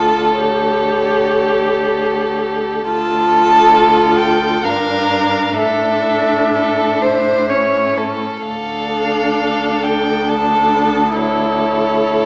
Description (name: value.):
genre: classical, slow romantic movement for string quartet.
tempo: 61-73 BPM.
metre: 3/4.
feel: rubato.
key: D minor.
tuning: A4 = 440 Hz.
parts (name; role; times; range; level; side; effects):
dark violin; melody; 0.0-12.3 s; C#5 to A5; -19 LUFS; equal; none.
warm violin; second line; 0.0-12.3 s; A4 to C#5; -20 LUFS; equal; none.
warm viola; accompaniment; 0.0-12.3 s; C#4 to G4; -22 LUFS; equal; none.
warm cello; bass; 0.0-12.3 s; D2 to A2; -25 LUFS; equal; none.
room: wet recital hall reverb, RT60 1.4 s.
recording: heard from further back in the room, small speaker sound.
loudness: -15 LUFS.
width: mono.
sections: 0.0-12.3 A section.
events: none.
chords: 0.4 A7/D; 2.9 Dm; 4.6 Gm7; 5.6 Asus4; 7.5 A; 8.5 Dm; 11.2 A/D.